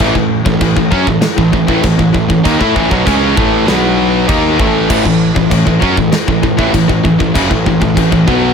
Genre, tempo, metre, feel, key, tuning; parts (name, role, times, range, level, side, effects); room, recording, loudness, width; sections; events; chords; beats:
heavy metal; 98 BPM; 4/4; straight; A4 = 440 Hz
fuzz guitar; riff; 0.0-8.5 s; F#2 to E4; -18 LUFS; right 1 dB; distortion
high-gain distorted guitar; riff; 0.0-8.5 s; F#2 to E4; -15 LUFS; right 11 dB; distortion
tight distorted guitar; riff; 0.0-8.5 s; F#2 to E4; -15 LUFS; left 11 dB; distortion
fuzz picked electric bass; bass; 0.0-8.5 s; F#1 to A2; -17 LUFS; equal; overdrive
big rock drum kit; drums; 0.0-8.4 s; china cymbal, crash cymbal, kick drum, snare drum; -16 LUFS; equal
little or no reverb; -9 LUFS; side -6 dB against mid
0.0-8.5 A section
0.0 A5; 3.7 B5; 4.3 A5
| 0.01 0.62 1.23 1.84 | 2.45 3.07 3.68 4.29 | 4.90 5.51 6.13 6.74 | 7.35 7.96